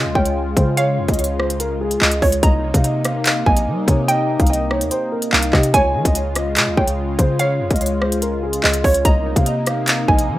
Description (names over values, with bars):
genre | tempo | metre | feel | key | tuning
hip hop, drill | 145 BPM | 4/4 | half-time | unclear | A4 = 439 Hz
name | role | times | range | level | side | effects
dark concert grand piano | melody | 0.0-10.4 s | G4 to F5 | -23 LUFS | equal | none
warm analog pad | sustained chords | 0.0-10.4 s | C3 to F4 | -24 LUFS | left 1 dB | chorus
hard-hitting 808-style bass | bass | 0.0-10.4 s | Bb1 to G3 | -22 LUFS | equal | none
hollow square pluck | second line | 0.2-10.4 s | Db5 to Bb5 | -22 LUFS | right 2 dB | chorus, tape echo
drill drum kit | drums | 0.2-10.3 s | handclaps, hi-hat, kick drum, rim click | -17 LUFS | equal | none
room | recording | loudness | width
light reverb | rough home demo mix | -15 LUFS | side -15 dB against mid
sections
0.0-10.4 A section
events
none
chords
0.0 Db; 2.4 Cm7; 5.7 Db; 9.1 Cm7